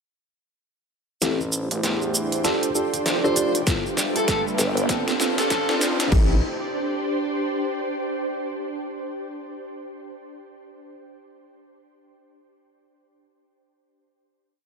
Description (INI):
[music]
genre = glitch hop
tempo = 98 BPM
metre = 4/4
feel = swing 61% on 16ths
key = A minor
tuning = A4 = 440 Hz
[part]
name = dark analog pad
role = sustained chords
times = 1.5-6.4 s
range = G3 to F5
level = -30 LUFS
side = equal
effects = chorus, sidechain pumping
[part]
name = mellow tine electric piano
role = stabs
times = 1.2-6.4 s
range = B3 to D5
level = -26 LUFS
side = equal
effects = phaser, sidechain pumping, low-pass filter, digital delay
[part]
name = gritty driven synth bass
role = bass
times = 1.2-6.4 s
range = F1 to E2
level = -27 LUFS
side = equal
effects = tube saturation, high-pass filter
[part]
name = dubstep drum kit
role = drums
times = 1.2-6.3 s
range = crash cymbal, hi-hat, rim click, snare drum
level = -27 LUFS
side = equal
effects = high-pass filter on snare, studio ambience, high-pass filter on hats, high-pass filter on cymbals
[part]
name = cabasa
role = percussion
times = 1.2-6.1 s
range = none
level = -28 LUFS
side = right 2 dB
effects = none
[part]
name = riser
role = sound effects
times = 3.0-6.1 s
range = none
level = -31 LUFS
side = right 2 dB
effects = none
[part]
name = ethereal airy pad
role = texture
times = 1.6-8.5 s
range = D4 to C5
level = -28 LUFS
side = equal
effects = ensemble chorus, built-in reverb, sidechain pumping
[part]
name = dark smooth lead guitar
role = melody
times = 3.2-5.8 s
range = A4 to C5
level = -28 LUFS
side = right 2 dB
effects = overdrive, digital delay
[part]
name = electronic kick drum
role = drums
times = 3.7-6.3 s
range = none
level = -23 LUFS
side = equal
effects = studio ambience
[part]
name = vowel-sweep wobble bass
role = bass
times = 4.6-4.9 s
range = G1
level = -23 LUFS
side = equal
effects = chorus, tube saturation
[sound]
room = light reverb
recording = high-pass filter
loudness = -21 LUFS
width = side -5 dB against mid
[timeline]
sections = 1.2-6.1 build; 6.1-8.6 final chord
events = build-up 1.2-6.1; drum fill 1.2-6.1; filter sweep on tine electric piano 1.2-6.1; riser 3.0-6.1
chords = 1.2 Am7; 2.4 F69; 3.7 G13; 4.9 Dm7; 6.1 Am7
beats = | 1.22 1.83 2.45 3.06 | 3.67 4.28 4.90 5.51 | 6.12 6.73 7.34 7.96